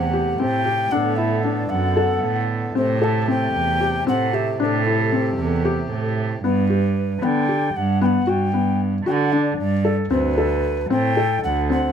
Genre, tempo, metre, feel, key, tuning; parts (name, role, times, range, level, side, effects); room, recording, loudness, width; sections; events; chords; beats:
contemporary instrumental, chamber music in an uneven meter; 228 BPM (eighths); 7/8; straight; A4 = 440 Hz
breathy alto ocarina; melody; 0.0-11.9 s; A4 to A5; -25 LUFS; left 1 dB
pedal harmonium; sustained chords; 0.0-6.4 s; C3 to A4; -28 LUFS; left 1 dB
warm cello; bass; 0.0-11.9 s; D2 to D3; -21 LUFS; right 4 dB
felt-muted upright piano; arpeggios; 0.1-11.9 s; B3 to A4; -23 LUFS; left 4 dB
little or no reverb; close, detailed microphones, faint mains hum; -18 LUFS; side -8 dB against mid
0.0-6.4 A section; 6.4-11.9 B section
0.0 Am7; 0.9 Bm7; 2.8 Am7; 6.4 G; 10.1 D7sus4
0.13 0.40 0.66 | 0.92 1.18 1.45 1.71 1.97 2.23 2.49 | 2.76 3.02 3.28 3.54 3.81 4.07 4.33 | 4.59 4.86 5.12 5.38 5.65 5.91 6.17 | 6.43 6.70 6.96 7.22 7.49 7.75 8.01 | 8.28 8.54 8.80 9.06 9.33 9.59 9.85 | 10.12 10.38 10.64 10.91 11.17 11.43 11.70